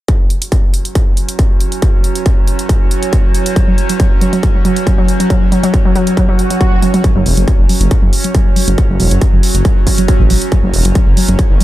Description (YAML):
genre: driving peak-time techno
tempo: 138 BPM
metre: 4/4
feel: straight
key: unclear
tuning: A4 = 440 Hz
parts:
  - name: metallic inharmonic drone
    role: drone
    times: 0.8-11.6 s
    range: F#3 to C#4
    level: -20 LUFS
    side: right 3 dB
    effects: chorus, built-in reverb, sidechain pumping
  - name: electronic hi-hat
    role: drums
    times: 0.1-11.6 s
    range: none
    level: -21 LUFS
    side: right 1 dB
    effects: overdrive, sidechain pumping on hats
  - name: electronic kick drum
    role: drums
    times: 0.1-11.5 s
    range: none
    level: -12 LUFS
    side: equal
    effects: distortion
  - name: warbly dusty pluck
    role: riff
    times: 3.6-11.6 s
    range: F#3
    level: -17 LUFS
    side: equal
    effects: chorus, tube saturation, sidechain pumping, digital delay
  - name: swell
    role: sound effects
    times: 6.3-7.0 s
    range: none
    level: -22 LUFS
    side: right 4 dB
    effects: none
  - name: detuned saw bass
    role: bass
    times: 7.2-11.6 s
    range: E1 to A1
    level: -13 LUFS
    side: equal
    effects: sidechain pumping
room: little or no reverb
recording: none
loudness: -10 LUFS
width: side -15 dB against mid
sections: 0.1-7.0 A section; 7.0-11.6 B section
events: swell 6.3-7.0; filter sweep on synth arpeggio sound 7.0-11.6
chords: 0.1 F#5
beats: | 0.09 0.52 0.95 1.39 | 1.82 2.26 2.69 3.13 | 3.56 4.00 4.43 4.87 | 5.30 5.74 6.17 6.61 | 7.04 7.48 7.91 8.35 | 8.78 9.21 9.65 10.09 | 10.52 10.95 11.39